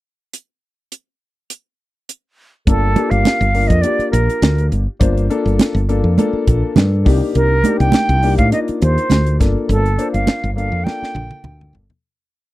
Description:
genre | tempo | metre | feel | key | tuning
electric jazz fusion | 102 BPM | 4/4 | straight | G minor | A4 = 440 Hz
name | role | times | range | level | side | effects
tight funk drum kit | drums | 0.3-12.0 s | hi-hat, kick drum, snare drum, toms | -17 LUFS | equal | none
bright reedy concert flute | melody | 2.7-11.7 s | A4 to G5 | -19 LUFS | right 2 dB | slapback echo
warm concert grand piano | accompaniment | 2.7-11.8 s | Bb3 to C5 | -21 LUFS | left 4 dB | none
woody fretless electric bass | bass | 2.7-11.9 s | G1 to A2 | -16 LUFS | equal | none
congas | percussion | 2.7-11.8 s | none | -18 LUFS | right 4 dB | none
room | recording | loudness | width
little or no reverb | dry, close 1970s-style studio recording | -13 LUFS | side -17 dB against mid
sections
0.3-2.7 pickup bar; 2.7-12.0 A section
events
fade-out 9.7-12.0; drum fill 10.9-12.0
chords
0.3 N.C.; 2.7 Gm9; 7.1 Cm9; 9.4 Gm9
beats
| 0.33 0.91 1.50 2.08 | 2.67 3.25 3.84 4.42 | 5.01 5.59 6.18 6.77 | 7.35 7.94 8.53 9.11 | 9.70 10.29 10.87 11.46

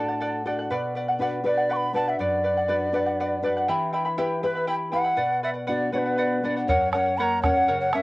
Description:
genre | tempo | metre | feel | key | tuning
andean folk, Andean ensemble | 80 BPM (dotted quarters) | 6/8 | straight | B minor | A4 = 442 Hz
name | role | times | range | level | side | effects
large quena | melody | 0.0-8.0 s | B4 to C#6 | -24 LUFS | equal | none
charango | accompaniment | 0.0-8.0 s | E4 to B5 | -27 LUFS | equal | none
nylon-string guitar | accompaniment | 0.0-8.0 s | F#2 to B4 | -29 LUFS | left 2 dB | none
reedy polished pan flute | second line | 6.7-8.0 s | A#4 to F#5 | -26 LUFS | left 1 dB | tape echo
bombo | percussion | 6.7-8.0 s | none | -27 LUFS | right 2 dB | none
room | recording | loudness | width
moderate booth ambience, RT60 0.2 s | home recording on cassette | -22 LUFS | side -20 dB against mid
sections
0.0-6.7 A section; 6.7-8.0 B section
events
none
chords
0.0 D; 0.7 Bm; 3.7 Em; 5.2 Bm; 6.7 F#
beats
| 0.70 1.45 | 2.20 2.95 | 3.70 4.45 | 5.19 5.94 | 6.69 7.44

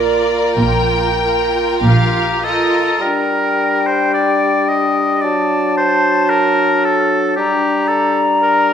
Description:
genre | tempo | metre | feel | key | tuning
classical, slow romantic movement for symphony orchestra | 47-58 BPM | 4/4 | rubato | Bb major, G minor from 3.0 s | A4 = 440 Hz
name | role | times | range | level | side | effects
clear symphonic violin section | melody | 0.0-3.0 s | D5 to G5 | -20 LUFS | left 4 dB | none
warm symphonic violin section | second line | 0.0-3.0 s | Bb4 | -22 LUFS | left 1 dB | none
mellow bassoon | accompaniment | 0.0-8.7 s | F#3 to Bb3 | -19 LUFS | right 3 dB | none
warm symphonic viola section | accompaniment | 0.0-3.0 s | F4 | -23 LUFS | right 2 dB | none
rich symphonic cello section | bass | 0.0-2.9 s | Bb2 | -20 LUFS | right 1 dB | none
rich symphonic double bass section | bass | 0.0-2.9 s | Bb1 | -19 LUFS | right 2 dB | none
clear oboe | second line | 1.8-8.7 s | G4 to Eb5 | -17 LUFS | equal | none
mellow concert flute | second line | 3.0-8.7 s | G5 to Bb5 | -18 LUFS | left 2 dB | none
warm clarinet | second line | 3.0-8.7 s | D4 | -22 LUFS | left 8 dB | none
room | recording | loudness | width
wet scoring stage reverb, RT60 1.6 s | none | -12 LUFS | side -8 dB against mid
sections
0.0-3.0 A section; 3.0-8.7 B section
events
none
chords
0.0 Bb5; 3.0 G5; 5.2 D/F#; 7.4 Gm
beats
0.58 1.83 | 3.02 4.14 5.24 6.32 | 7.38 8.43

